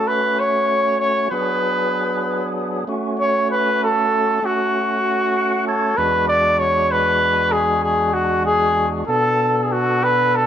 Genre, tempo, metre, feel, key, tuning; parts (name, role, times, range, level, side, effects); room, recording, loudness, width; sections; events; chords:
progressive instrumental, progressive; 194 BPM (eighths); 5/8; straight; A4 = 440 Hz
mellow trumpet; melody; 0.0-10.5 s; F#4 to D5; -17 LUFS; equal; tape echo
tonewheel organ; accompaniment; 0.0-10.5 s; E2 to F#5; -22 LUFS; right 1 dB; overdrive, fast rotary speaker
wet studio reverb, RT60 0.7 s; -16 LUFS; side -9 dB against mid
0.0-6.0 A section; 6.0-10.5 B section
tonewheel organ fill 5.0-6.0
0.0 F#m; 1.3 G#dim/F#; 2.9 F#m; 6.0 E7; 9.1 Bm7